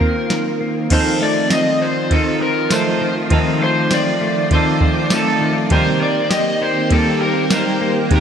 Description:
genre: dream pop.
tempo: 100 BPM.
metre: 4/4.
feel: straight.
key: unclear.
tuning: A4 = 440 Hz.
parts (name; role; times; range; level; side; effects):
overdriven slide guitar; melody; 0.0-7.9 s; A4 to Eb5; -20 LUFS; equal; wide subtle chorus, digital delay.
soft string machine; sustained chords; 0.0-8.2 s; C3 to D5; -21 LUFS; equal; ensemble chorus.
semi-hollow electric guitar; arpeggios; 0.0-8.2 s; Eb3 to G4; -21 LUFS; left 3 dB; wide subtle chorus, digital delay.
soft vintage rhythm box; drums; 0.0-8.2 s; crash cymbal, hi-hat, kick drum, ride cymbal, snare drum, tambourine; -20 LUFS; equal; none.
semi-hollow electric guitar; accompaniment; 0.9-8.2 s; C3 to Bb4; -22 LUFS; right 5 dB; harmonic tremolo, wide subtle chorus.
room: wet lush hall reverb, RT60 1.9 s.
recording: bright 1980s-style digital production.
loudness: -14 LUFS.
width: side -8 dB against mid.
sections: 0.9-8.2 A section.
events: none.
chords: 0.0 F7sus4; 0.9 F7; 5.7 Cm7.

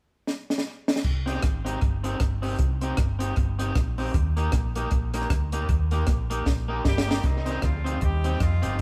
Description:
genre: ska.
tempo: 155 BPM.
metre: 4/4.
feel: swing 58% on 8ths.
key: C minor.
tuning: A4 = 440 Hz.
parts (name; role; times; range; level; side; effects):
compact cocktail drum kit; drums; 0.3-8.8 s; crash cymbal, hi-hat, kick drum, rim click, snare drum; -28 LUFS; equal; tape echo.
hollow-body short-scale fingered electric bass; bass; 1.0-8.8 s; G1 to F2; -30 LUFS; equal; none.
electric guitar at the edge of break-up; accompaniment; 1.3-8.8 s; Bb3 to G4; -34 LUFS; equal; spring reverb.
clear horn section; melody; 6.9-8.8 s; Eb3 to G4; -34 LUFS; equal; none.
room: light reverb.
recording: band playing live in one room.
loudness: -25 LUFS.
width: mono.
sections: 0.0-1.0 A section; 1.0-7.2 B section; 7.2-8.8 C section.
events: drum fill 0.3-1.0, 6.5-7.2.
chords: 0.0 N.C.; 1.0 Cm; 4.1 Eb; 7.2 Cm.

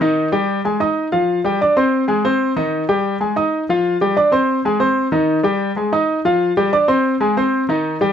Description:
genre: latin.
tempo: 188 BPM.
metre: 4/4.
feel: straight.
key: unclear.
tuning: A4 = 444 Hz.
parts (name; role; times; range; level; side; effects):
clear grand piano; solo; 0.0-8.1 s; Eb3 to Eb6; -15 LUFS; equal; none.
room: moderate studio reverb, RT60 0.5 s.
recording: dark, warm production.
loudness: -15 LUFS.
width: side -8 dB against mid.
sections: 0.0-8.1 A section.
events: none.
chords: 0.0 Eb; 0.7 Ab5; 1.3 G5; 1.9 Ab; 2.6 Eb; 3.2 Ab5; 3.8 G5; 4.5 Ab; 5.1 Eb; 5.8 Ab5; 6.4 G5; 7.0 Ab.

